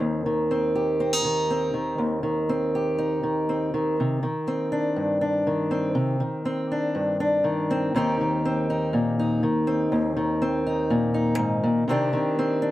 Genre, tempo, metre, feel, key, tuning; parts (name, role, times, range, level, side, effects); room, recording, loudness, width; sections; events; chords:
folk; 121 BPM; 4/4; straight; Eb major; A4 = 442 Hz
fingerpicked acoustic archtop guitar; solo; 0.0-12.7 s; Eb2 to G4; -22 LUFS; equal
moderate small room ambience, RT60 0.5 s; dark, warm production; -22 LUFS; side -15 dB against mid
0.0-4.0 A section; 4.0-12.7 B section
build-up 4.0-12.7
0.0 Eb6; 4.0 Cmadd9; 8.0 Eb6; 11.9 Cmadd9